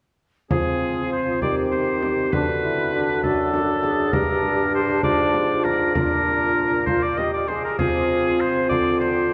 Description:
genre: classical, renaissance-style consort dance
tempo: 66 BPM (dotted quarters)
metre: 6/8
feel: straight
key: F dorian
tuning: A4 = 441 Hz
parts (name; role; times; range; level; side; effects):
- clear oboe; melody; 0.5-9.3 s; Ab4 to Eb5; -26 LUFS; equal; none
- mellow hollow tenor recorder; second line; 0.5-9.3 s; F4 to Ab4; -28 LUFS; equal; none
- warm trombone; accompaniment; 0.5-9.3 s; C4 to Ab4; -28 LUFS; equal; none
- mellow bassoon; bass; 0.5-9.3 s; F#2 to F3; -29 LUFS; equal; none
- frame drum; percussion; 0.5-9.3 s; none; -32 LUFS; equal; none
room: wet cathedral reverb, RT60 4.3 s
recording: recorded in a church or concert hall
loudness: -21 LUFS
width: mono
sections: 0.5-9.3 A section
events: none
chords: 0.5 Fm; 2.3 D; 4.1 Gm; 6.0 Bb; 7.8 Fm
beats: | 0.51 1.43 | 2.33 3.24 | 4.14 5.04 | 5.96 6.87 | 7.79 8.71

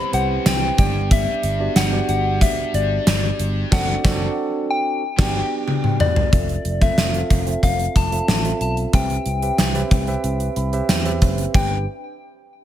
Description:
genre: 1980s-style pop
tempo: 92 BPM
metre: 4/4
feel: straight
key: G major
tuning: A4 = 445 Hz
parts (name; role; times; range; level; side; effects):
- soft struck synth lead; melody; 0.0-11.9 s; D5 to A5; -24 LUFS; left 4 dB; chorus, digital delay
- scooped high-gain guitar; accompaniment; 0.0-5.4 s; C3 to G4; -32 LUFS; left 1 dB; distortion, wide subtle chorus
- tine electric piano; accompaniment; 0.0-11.8 s; G3 to B5; -26 LUFS; right 5 dB; none
- sustaining fretless electric bass; bass; 0.1-11.8 s; F1 to E2; -23 LUFS; equal; analog chorus
- gated 80s drum kit; drums; 0.1-11.7 s; crash cymbal, hi-hat, kick drum, snare drum, tambourine, toms; -19 LUFS; equal; gated reverb
room: light reverb, studio reverb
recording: none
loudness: -17 LUFS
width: side -11 dB against mid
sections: 0.0-6.3 A section; 6.3-11.5 B section; 11.5-12.6 C section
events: band accent 3.7-6.3; drum fill 5.7-6.3; tine electric piano fill 10.2-11.5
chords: 0.0 Cmaj7; 0.8 Gmaj7; 3.7 D7/F#; 5.0 Gmaj7; 6.3 Fmaj7; 8.9 Cmaj7; 11.5 G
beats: 0.46 | 1.11 1.76 2.41 3.07 | 3.72 4.37 5.02 5.67 | 6.33 6.98 7.63 8.28 | 8.94 9.59 10.24 10.89 | 11.54

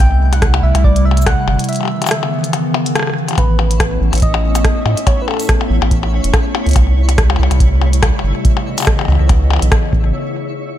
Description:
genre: IDM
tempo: 142 BPM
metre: 4/4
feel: swing 56% on 16ths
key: A lydian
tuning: A4 = 440 Hz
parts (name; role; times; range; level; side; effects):
- soft struck synth lead; melody; 0.0-5.7 s; A4 to G5; -23 LUFS; equal; chorus, cassette tape, ping-pong delay
- warbly tape-like pad; sustained chords; 0.0-10.1 s; A2 to D#5; -20 LUFS; left 1 dB; chorus, built-in reverb
- round analog bass; bass; 0.0-10.1 s; E1 to A2; -13 LUFS; equal; none
- electronic kick drum; drums; 0.0-10.0 s; none; -14 LUFS; equal; studio reverb
- glitchy drum kit; drums; 0.0-9.8 s; hi-hat, percussion blips, rim click, shaker; -19 LUFS; left 4 dB; studio reverb
- twinkling granular texture; texture; 3.7-10.1 s; E4 to C#5; -28 LUFS; right 1 dB; built-in reverb, sidechain pumping
room: little or no reverb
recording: none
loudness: -11 LUFS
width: side -12 dB against mid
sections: 0.0-3.4 A section; 3.4-10.1 B section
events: break 1.7-3.4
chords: 0.0 C6; 1.7 C#m9; 3.4 Aadd9; 6.8 C6; 8.4 C#m9; 9.9 Amaj9; 10.1 N.C.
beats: | 0.00 0.42 0.84 1.26 | 1.69 2.11 2.53 2.96 | 3.38 3.80 4.22 4.64 | 5.07 5.49 5.91 6.33 | 6.76 7.18 7.60 8.03 | 8.45 8.87 9.29 9.72 | 10.14

